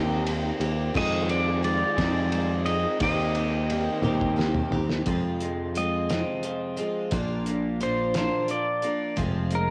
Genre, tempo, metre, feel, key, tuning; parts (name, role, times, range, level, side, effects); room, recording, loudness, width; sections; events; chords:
folk rock and heartland rock; 58 BPM (dotted quarters); 6/8; straight; F dorian; A4 = 440 Hz
pedal steel guitar; melody; 0.0-9.7 s; Bb4 to Eb5; -31 LUFS; equal; cassette tape
picked twelve-string acoustic guitar; accompaniment; 0.0-9.7 s; F2 to G4; -35 LUFS; equal; cassette tape
dark studio string section; sustained chords; 0.0-5.0 s; Eb4 to C5; -42 LUFS; equal
electric guitar through a small old amp; riff; 0.0-9.7 s; F2 to Ab4; -35 LUFS; equal; cassette tape
picked electric bass; bass; 0.0-9.7 s; F1 to F2; -30 LUFS; equal
cloth-damped thuddy drum kit; drums; 0.3-9.7 s; crash cymbal, hi-hat, kick drum, ride cymbal, snare drum, toms; -34 LUFS; equal; cassette tape
light reverb, small room ambience; home recording on cassette; -26 LUFS; mono
0.0-5.1 A section; 5.1-9.7 B section
drum fill 4.0-5.1; pedal steel guitar solo 5.1-9.7
0.0 Cm7/Eb; 0.9 Fm7; 3.0 Cm7/Eb; 5.1 Fm; 7.1 Bb; 9.2 Fm